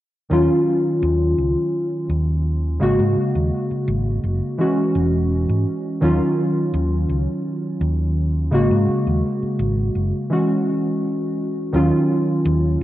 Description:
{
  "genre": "vaporwave",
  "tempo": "84 BPM",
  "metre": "4/4",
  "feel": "straight",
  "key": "Eb minor",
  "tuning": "A4 = 440 Hz",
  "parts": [
    { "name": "warbly lo-fi synth keys", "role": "accompaniment", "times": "0.3-12.8 s", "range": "Db3 to Gb4", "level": "-19 LUFS", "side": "equal", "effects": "lush chorus, analog delay" },
    { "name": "hollow-body short-scale fingered electric bass", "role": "bass", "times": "0.3-12.8 s", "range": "E1 to Ab2", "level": "-20 LUFS", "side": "equal", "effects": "tube saturation" }
  ],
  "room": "wet concert hall reverb, RT60 1.8 s",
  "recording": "cassette tape",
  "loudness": "-18 LUFS",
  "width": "side -14 dB against mid",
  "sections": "0.3-11.7 A section; 11.7-12.8 B section",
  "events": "break 11.0-11.7",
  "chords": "0.3 Ebm9; 2.8 Ab9sus4; 4.6 E69; 6.0 Ebm9; 8.5 Ab9sus4; 10.3 E69; 11.7 Ebm9",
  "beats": "| 0.31 1.02 1.74 2.45 | 3.17 3.88 4.60 5.31 | 6.02 6.74 7.45 8.17 | 8.88 9.60 10.31 11.02 | 11.74 12.45"
}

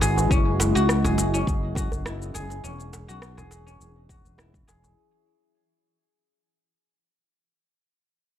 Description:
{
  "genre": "organic downtempo",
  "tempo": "103 BPM",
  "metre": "4/4",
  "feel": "swing 54% on 16ths",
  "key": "C# dorian",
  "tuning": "A4 = 444 Hz",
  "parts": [
    { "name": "granular cloud pad", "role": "sustained chords", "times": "0.0-5.0 s", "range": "E3 to G#5", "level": "-28 LUFS", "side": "equal", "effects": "built-in reverb, sidechain pumping" },
    { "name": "guzheng", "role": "arpeggios", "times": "0.0-7.0 s", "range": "C#4 to G#4", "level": "-30 LUFS", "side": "left 2 dB", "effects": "low-pass filter, tape echo" },
    { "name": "fretless electric bass", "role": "bass", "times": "0.0-4.9 s", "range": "E1 to C#2", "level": "-26 LUFS", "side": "equal", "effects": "analog chorus" },
    { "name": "electronic cabasa and rim click", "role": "drums", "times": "0.0-4.9 s", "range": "none", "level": "-30 LUFS", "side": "left 1 dB", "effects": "none" },
    { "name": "djembe", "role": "percussion", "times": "0.0-4.9 s", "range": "none", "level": "-34 LUFS", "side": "right 1 dB", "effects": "none" },
    { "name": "electronic kick drum", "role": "drums", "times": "0.3-4.6 s", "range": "none", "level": "-25 LUFS", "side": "equal", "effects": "none" }
  ],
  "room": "small room ambience",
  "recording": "dry, gritty hardware recording",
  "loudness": "-21 LUFS",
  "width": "side -10 dB against mid",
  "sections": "0.0-5.0 A section",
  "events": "fade-out 0.0-5.0; filter sweep on guzheng 0.0-5.0",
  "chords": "0.3 F#add9; 2.6 C#m/E",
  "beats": "| 0.30 0.89 1.47 2.05 | 2.63 3.22 3.80 4.38"
}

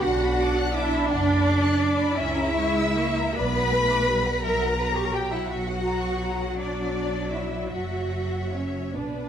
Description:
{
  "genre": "classical, slow romantic movement for string orchestra",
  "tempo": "45-57 BPM (dotted quarters)",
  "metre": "6/8",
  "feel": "rubato",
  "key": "B minor",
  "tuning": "A4 = 438 Hz",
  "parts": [
    { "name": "warm symphonic violin section", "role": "melody", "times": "0.0-9.3 s", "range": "D5 to F#6", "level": "-34 LUFS", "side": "left 6 dB", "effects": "none" },
    { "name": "rich symphonic violin section", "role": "second line", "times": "0.0-9.3 s", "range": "B4 to B5", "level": "-30 LUFS", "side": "left 4 dB", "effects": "none" },
    { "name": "rich symphonic viola section", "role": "accompaniment", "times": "0.0-9.3 s", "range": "F#3 to D4", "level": "-29 LUFS", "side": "equal", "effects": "none" },
    { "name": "rich symphonic double bass section", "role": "bass", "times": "0.0-9.3 s", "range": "F#1 to C#2", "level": "-29 LUFS", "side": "right 2 dB", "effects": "none" },
    { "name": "warm studio cello section", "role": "bass", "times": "0.0-9.3 s", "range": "B3 to B4", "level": "-26 LUFS", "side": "right 2 dB", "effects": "none" }
  ],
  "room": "wet scoring stage reverb, RT60 1.6 s",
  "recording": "none",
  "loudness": "-22 LUFS",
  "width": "side -9 dB against mid",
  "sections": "0.0-9.3 A section",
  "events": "none",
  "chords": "0.0 Bm; 2.2 A#dim/C#; 3.4 Bm; 4.4 F#7/B; 6.6 Bm; 7.7 F#5",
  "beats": "| 0.02 1.09 | 2.16 3.36 | 4.43 5.49 | 6.58 7.73 | 8.94"
}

